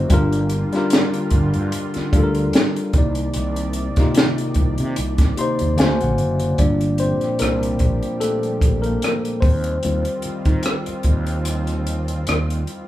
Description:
R&B, neo-soul; 74 BPM; 4/4; swing 55% on 16ths; G minor; A4 = 439 Hz
tine electric piano; accompaniment; 0.0-12.9 s; C3 to C6; -22 LUFS; left 2 dB
warm analog pad; sustained chords; 0.0-12.9 s; Bb2 to D5; -30 LUFS; right 1 dB; chorus
fretless electric bass; bass; 0.0-12.6 s; F#1 to Eb3; -23 LUFS; right 1 dB
compact cocktail drum kit; drums; 0.1-12.9 s; hi-hat, kick drum, rim click, snare drum; -19 LUFS; equal
light reverb; band playing live in one room; -17 LUFS; side -14 dB against mid
0.0-6.6 A section; 6.6-12.9 B section
tine electric piano fill 5.0-6.6; tine electric piano solo 6.6-12.9
0.1 Gm7; 2.9 Cm9; 5.8 D7alt; 6.6 Gm9; 9.4 Eb69

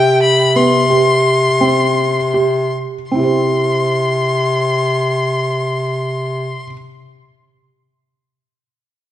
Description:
contemporary instrumental, chamber music in an uneven meter; 151-180 BPM (eighths); 7/8; straight; C major; A4 = 440 Hz
rich violin; melody; 0.0-6.6 s; G5 to C6; -18 LUFS; left 4 dB
felt-muted upright piano; arpeggios; 0.0-6.7 s; B3 to C5; -18 LUFS; right 3 dB
warm bass clarinet; bass; 0.0-6.6 s; C3; -16 LUFS; equal
moderate recital hall reverb, RT60 1.8 s; nothing above 10.3 kHz; -13 LUFS; side -12 dB against mid
0.0-3.1 A section; 3.1-5.9 B section
slowing down 0.0-3.1
0.0 C5; 3.1 C

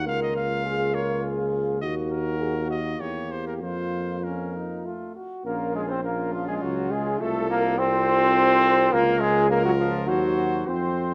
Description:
classical, brass quintet; 96-106 BPM; 3/4; rubato; Bb minor; A4 = 443 Hz
clear trumpet; melody; 0.0-11.1 s; F4 to F5; -36 LUFS; equal
warm flugelhorn; second line; 0.0-11.1 s; Db4 to C5; -32 LUFS; equal
bright trombone; accompaniment; 0.0-11.1 s; F3 to C4; -28 LUFS; equal
warm tuba; bass; 0.0-11.1 s; Bb1 to F2; -31 LUFS; equal
warm French horn; accompaniment; 0.1-11.1 s; Db4 to Bb4; -31 LUFS; equal
moderate recital hall reverb, RT60 1.5 s; close, detailed microphones; -24 LUFS; mono
0.0-5.5 A section; 5.5-11.1 B section
0.1 Bbm/Db; 1.8 Ebm; 3.0 Edim7; 3.6 Bbm/F; 4.8 F; 5.5 Bbm; 7.2 F/C; 8.9 Bbm/Db; 10.1 Cdim/Eb

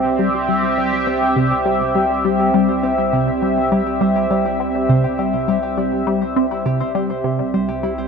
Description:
ambient, sequencer-driven space music; 102 BPM; 4/4; straight; A4 = 439 Hz
sweeping resonant pad; sustained chords; 0.0-8.1 s; C4 to E5; -18 LUFS; right 1 dB; chorus
concert harp; arpeggios; 0.0-8.1 s; E4 to C5; -38 LUFS; right 2 dB; auto-pan, tape echo
tight sequenced synth; riff; 0.0-7.9 s; C3 to C4; -19 LUFS; left 1 dB; chorus, phaser, tape echo
warm sub bass; bass; 0.0-8.1 s; C2; -37 LUFS; equal
wet plate reverb, RT60 2.8 s; -15 LUFS; side -5 dB against mid
0.0-8.1 A section
fade-in on harp 0.0-8.1
0.0 C

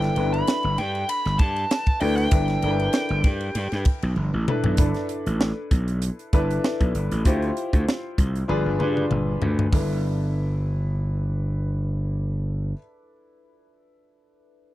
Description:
polished 1980s jazz-funk pop; 97 BPM; 4/4; swing 54% on 16ths; G major; A4 = 440 Hz
biting lead guitar; melody; 0.0-4.1 s; G5 to B5; -27 LUFS; equal; overdrive
warm concert grand piano; accompaniment; 0.0-14.7 s; D4 to C5; -28 LUFS; left 2 dB; lush chorus
gritty slap bass; bass; 0.0-12.7 s; G1 to G2; -24 LUFS; equal; overdrive
crisp fusion drum kit; drums; 0.0-9.9 s; hi-hat, kick drum, ride cymbal, snare drum, toms; -23 LUFS; equal
little or no reverb; dry, close 1970s-style studio recording; -21 LUFS; side -16 dB against mid
0.0-4.8 A section; 4.8-9.7 B section; 9.7-12.2 C section
drum fill 4.2-4.8, 8.5-9.7
0.0 G69; 7.3 Dm11; 8.5 G7b9; 9.7 G69

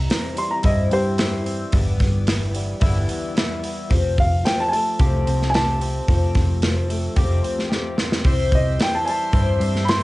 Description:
folk rock and heartland rock; 110 BPM; 4/4; straight; C major; A4 = 440 Hz
warm grand piano; melody; 0.0-10.0 s; G4 to C6; -23 LUFS; equal; cassette tape
picked twelve-string acoustic guitar; accompaniment; 0.0-10.0 s; G2 to G4; -29 LUFS; left 5 dB; analog chorus, cassette tape
electric guitar through a small old amp; riff; 0.0-10.0 s; G2 to G4; -30 LUFS; equal; cassette tape
hollow-body short-scale picked electric bass; bass; 0.0-10.0 s; F1 to G2; -21 LUFS; equal
natural country drum kit; drums; 0.1-10.0 s; hi-hat, kick drum, snare drum; -21 LUFS; equal; cassette tape
tonewheel organ; sustained chords; 8.3-10.0 s; G4 to C6; -31 LUFS; right 1 dB; slow rotary speaker, overdrive, cassette tape
little or no reverb; home recording on cassette, nothing above 10.8 kHz; -18 LUFS; side -19 dB against mid
0.0-10.0 A section
grand piano solo 0.0-10.0; drum fill 7.7-8.2
0.0 C; 1.7 G6; 3.9 Fadd9; 8.2 C

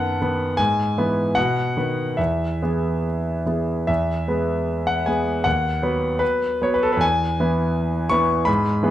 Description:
classical, romantic character piece for solo piano; 69-85 BPM; 2/4; rubato; E major; A4 = 440 Hz
clear concert grand piano; solo; 0.0-8.9 s; D#2 to C#6; -19 LUFS; equal
moderate large studio reverb, RT60 0.9 s; -19 LUFS; side -12 dB against mid
0.0-3.9 A section; 3.9-8.9 A section
0.0 B7/F#; 0.6 E/G#; 1.4 B; 2.2 E; 5.5 B/D#; 7.0 E

